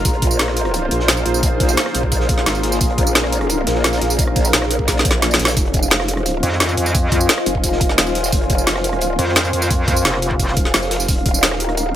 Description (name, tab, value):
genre	dark technical drum and bass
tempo	174 BPM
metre	4/4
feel	straight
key	F minor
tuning	A4 = 441 Hz
part	dark analog pad	sustained chords	0.0-12.0 s	Bb3 to F5	-24 LUFS	equal	chorus, sidechain pumping
part	growl bass	bass	0.0-11.9 s	Eb1 to Bb1	-21 LUFS	equal	chorus, overdrive, sidechain pumping
part	drum and bass drum kit	drums	0.0-11.8 s	hi-hat, rim click, snare drum, tambourine	-18 LUFS	equal	overdrive
part	granular cloud pad	texture	0.0-12.0 s	Db4 to Bb5	-25 LUFS	left 1 dB	built-in reverb, sidechain pumping
part	crunchy breakbeat drum kit	drums	0.1-11.9 s	hi-hat, snare drum	-30 LUFS	equal	none
part	electronic kick drum	drums	0.1-11.3 s	none	-19 LUFS	equal	overdrive
part	metallic wobble bass	bass	6.4-10.6 s	F1 to F2	-19 LUFS	equal	chorus
room	light reverb, digital ambience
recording	none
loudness	-14 LUFS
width	side -11 dB against mid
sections	0.0-12.0 A section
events	drum fill 4.9-5.6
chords	0.1 Bbmadd9; 5.6 Fm; 11.1 Eb5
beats	| 0.05 0.39 0.74 1.08 | 1.43 1.77 2.12 2.46 | 2.81 3.15 3.50 3.84 | 4.19 4.53 4.88 5.22 | 5.57 5.91 6.26 6.60 | 6.95 7.29 7.64 7.98 | 8.32 8.67 9.02 9.36 | 9.71 10.05 10.39 10.74 | 11.08 11.43 11.77